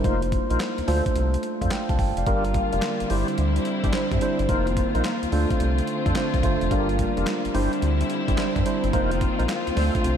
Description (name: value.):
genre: R&B, new jack swing.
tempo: 108 BPM.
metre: 4/4.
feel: swing 65% on 16ths.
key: unclear.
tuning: A4 = 438 Hz.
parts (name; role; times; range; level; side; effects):
mellow tine electric piano; accompaniment; 0.0-10.2 s; G3 to A5; -26 LUFS; right 3 dB; none.
tonewheel organ; stabs; 0.0-9.9 s; D4 to C5; -31 LUFS; left 2 dB; overdrive, chorus vibrato, slow rotary speaker, ping-pong delay.
round analog bass; bass; 0.0-10.2 s; F1 to G2; -25 LUFS; equal; none.
dusty soul sampler-style drum kit; drums; 0.0-10.2 s; handclaps, hi-hat, kick drum, snare drum; -28 LUFS; equal; none.
dark studio string section; sustained chords; 2.3-10.2 s; D3 to F4; -29 LUFS; left 4 dB; none.
room: moderate huge ambient reverb, RT60 4.4 s.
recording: dreamy mix soaked in reverb.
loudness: -21 LUFS.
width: side -8 dB against mid.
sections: 0.0-10.2 A section.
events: none.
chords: 0.0 F7sus4; 0.9 Dm7; 2.3 Gm7; 3.1 Cadd9/G; 4.5 F7sus4; 5.3 Dm7; 6.7 Gm7; 7.5 Cadd9/G; 8.9 F7sus4.